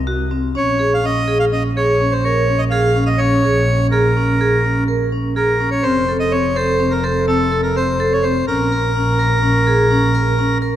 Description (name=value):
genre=contemporary instrumental, chamber music in an uneven meter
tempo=250 BPM (eighths)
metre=11/8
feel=straight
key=Bb minor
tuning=A4 = 440 Hz
part: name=clear double bass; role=bass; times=0.0-10.8 s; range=F1 to C2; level=-19 LUFS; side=equal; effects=none
part: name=vibraphone with medium hard mallets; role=arpeggios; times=0.1-10.8 s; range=C4 to Bb4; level=-18 LUFS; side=equal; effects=none
part: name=accordion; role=melody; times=0.6-10.6 s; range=A4 to F5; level=-19 LUFS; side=equal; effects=none
room=wet scoring stage reverb, RT60 2.0 s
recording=none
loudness=-14 LUFS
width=side -11 dB against mid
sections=0.0-10.8 A section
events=none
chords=0.0 C(b5, no3); 0.6 Bbm7; 5.8 F; 8.5 Bbm